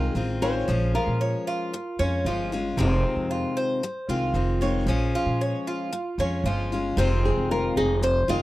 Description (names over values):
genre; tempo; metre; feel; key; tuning
latin; 114 BPM; 4/4; straight; F minor; A4 = 440 Hz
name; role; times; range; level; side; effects
nylon-string guitar; melody; 0.0-2.5, 7.0-8.4 s; Ab4 to Eb5; -28 LUFS; left 1 dB; none
picked steel-string acoustic guitar; accompaniment; 0.0-8.4 s; C3 to F4; -28 LUFS; left 3 dB; none
Cuban tres; arpeggios; 0.0-8.4 s; C4 to Db5; -29 LUFS; right 2 dB; none
upright bass; bass; 0.0-8.4 s; F1 to Bb2; -25 LUFS; right 1 dB; none
room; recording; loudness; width
light reverb; dry, close 1970s-style studio recording; -22 LUFS; side -16 dB against mid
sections
0.0-7.0 A section; 7.0-8.4 B section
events
none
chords
0.0 Fm7; 0.7 Bbm7; 2.8 Fm7; 4.9 Bbm7; 7.0 Fm7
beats
0.15 | 0.68 1.20 1.73 2.25 | 2.78 3.30 3.83 4.35 | 4.88 5.40 5.93 6.45 | 6.97 7.50 8.02